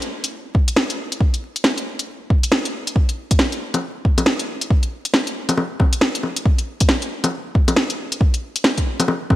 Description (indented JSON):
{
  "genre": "future garage",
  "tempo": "137 BPM",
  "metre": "4/4",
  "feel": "swing 61% on 16ths",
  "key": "none",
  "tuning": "none",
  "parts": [
    { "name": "organic electronic drum kit", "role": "drums", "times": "0.0-9.4 s", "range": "bongos, hi-hat, snare drum", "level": "-19 LUFS", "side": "equal", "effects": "overdrive" },
    { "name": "electronic kick drum", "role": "drums", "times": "0.5-9.4 s", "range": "none", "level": "-16 LUFS", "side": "equal", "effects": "overdrive" }
  ],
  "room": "light reverb",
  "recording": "bright 1980s-style digital production, vinyl crackle",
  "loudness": "-17 LUFS",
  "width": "side -15 dB against mid",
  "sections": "0.0-9.4 A section",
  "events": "none",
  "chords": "none"
}